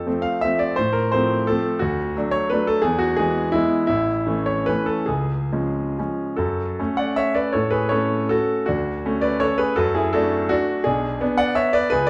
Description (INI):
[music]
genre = classical, romantic triple-time dance for piano with dotted rhythms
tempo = 130-187 BPM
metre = 3/4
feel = rubato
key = F# minor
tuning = A4 = 440 Hz
[part]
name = bright grand piano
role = solo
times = 0.0-12.1 s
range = A1 to F#5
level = -21 LUFS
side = equal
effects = none
[sound]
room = moderate recital hall reverb, RT60 1.5 s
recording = dark, warm production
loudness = -21 LUFS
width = mono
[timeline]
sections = 0.0-6.4 A section; 6.4-12.1 B section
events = none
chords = 0.0 F; 0.8 F/A; 1.8 D; 2.8 E; 3.9 A; 5.1 C#; 6.4 F#m; 7.6 F#m/A; 8.7 Dmaj7; 9.8 D/F#; 10.9 G#dim/B